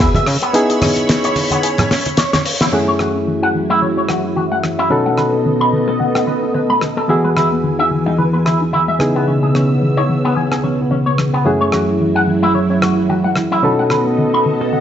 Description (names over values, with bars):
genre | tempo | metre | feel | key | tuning
nu-disco, nu disco | 110 BPM | 4/4 | swing 56% on 16ths | F# dorian | A4 = 440 Hz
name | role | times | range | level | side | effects
barky reed electric piano | accompaniment | 0.0-14.8 s | F#2 to A4 | -19 LUFS | equal | tape echo
string machine, full ensemble | sustained chords | 0.0-14.8 s | C#3 to E6 | -18 LUFS | right 1 dB | ensemble chorus
electric guitar with an envelope filter | riff | 0.0-14.8 s | B3 to B5 | -19 LUFS | left 1 dB | wide subtle chorus, low-pass filter, tape echo
damped 70s drum kit | drums | 0.0-14.0 s | hi-hat, rim click, snare drum | -19 LUFS | left 1 dB | none
congas | percussion | 0.1-2.4 s | none | -20 LUFS | right 2 dB | none
soft round pluck | arpeggios | 2.7-14.8 s | D#3 to E4 | -23 LUFS | left 2 dB | lush chorus, analog delay
room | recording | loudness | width
moderate echo chamber reverb, RT60 1.4 s, small room ambience | nothing above 7.8 kHz | -13 LUFS | side -9 dB against mid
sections
0.0-2.7 A section; 2.7-14.8 B section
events
drum fill 1.9-2.7; band accent 2.6; filter sweep on string machine 2.7-14.8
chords
0.3 C#m7; 2.7 F#m7; 4.9 B7; 7.1 Emaj7; 9.0 C#m7; 11.5 F#m7; 13.6 B7